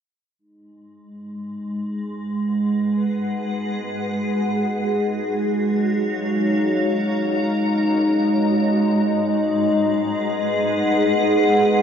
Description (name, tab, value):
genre	ambient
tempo	free time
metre	none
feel	none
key	G# dorian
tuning	A4 = 439 Hz
part	granular cloud pad	sustained chords	1.4-11.8 s	G#3 to A#5	-22 LUFS	equal	built-in reverb, lush chorus
part	analog drone	drone	1.1-11.8 s	G#3 to D#4	-20 LUFS	equal	chorus
room	wet lush hall reverb, RT60 2.5 s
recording	dreamy mix soaked in reverb, nothing above 7.8 kHz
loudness	-18 LUFS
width	side -8 dB against mid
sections	0.4-11.8 A section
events	fade-in on ambient pad 0.4-11.8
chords	0.4 G#m7; 4.1 D#m9; 7.9 G#m7